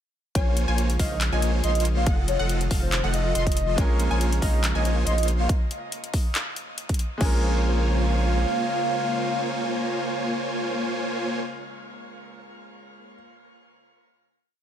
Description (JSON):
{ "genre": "future bass", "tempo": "140 BPM", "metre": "4/4", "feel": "swing 54% on 16ths, half-time", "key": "Bb minor", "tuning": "A4 = 441 Hz", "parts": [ { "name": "supersaw chords", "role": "riff", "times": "0.3-11.4 s", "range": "F3 to C6", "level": "-30 LUFS", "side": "equal", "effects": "sidechain pumping" }, { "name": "soft octave-layered synth lead", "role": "melody", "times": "0.4-11.4 s", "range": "C5 to F5", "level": "-31 LUFS", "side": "equal", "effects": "chorus, phaser, sidechain pumping, dub echo" }, { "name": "airy breathy pad", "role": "sustained chords", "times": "0.4-11.4 s", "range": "Db3 to F4", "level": "-36 LUFS", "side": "left 1 dB", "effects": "chorus, sidechain pumping" }, { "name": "wide unison pluck", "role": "arpeggios", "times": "0.4-11.5 s", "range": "F5 to C6", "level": "-36 LUFS", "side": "moving between left 5 dB and right 2 dB", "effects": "auto-pan, sidechain pumping, dub echo" }, { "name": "saturated sub bass", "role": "bass", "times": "0.4-8.5 s", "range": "F1 to Bb1", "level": "-24 LUFS", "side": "equal", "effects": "sidechain pumping" }, { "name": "big-room dance drum kit", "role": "drums", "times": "0.4-7.3 s", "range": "crash cymbal, handclaps, hi-hat", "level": "-31 LUFS", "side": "left 1 dB", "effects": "none" }, { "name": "electronic kick drum", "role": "drums", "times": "0.4-7.3 s", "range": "none", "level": "-24 LUFS", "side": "equal", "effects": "none" }, { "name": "bright grand piano", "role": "accompaniment", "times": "3.8-13.2 s", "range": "Ab3 to Bb4", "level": "-35 LUFS", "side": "right 3 dB", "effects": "sidechain pumping, dub echo" } ], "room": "digital ambience", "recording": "none", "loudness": "-22 LUFS", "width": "side -10 dB against mid", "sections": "0.4-7.2 drop; 7.2-10.6 final chord", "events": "drop 0.4-7.2", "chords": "0.4 Bbm7; 2.1 F7b9; 3.8 Bbm7; 5.5 N.C.; 7.2 Bbm7", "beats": "| 0.35 0.78 1.21 1.64 | 2.06 2.49 2.92 3.35 | 3.78 4.21 4.64 5.07 | 5.49 5.92 6.35 6.78 | 7.21 7.64 8.06 8.49 | 8.92 9.35 9.78 10.21" }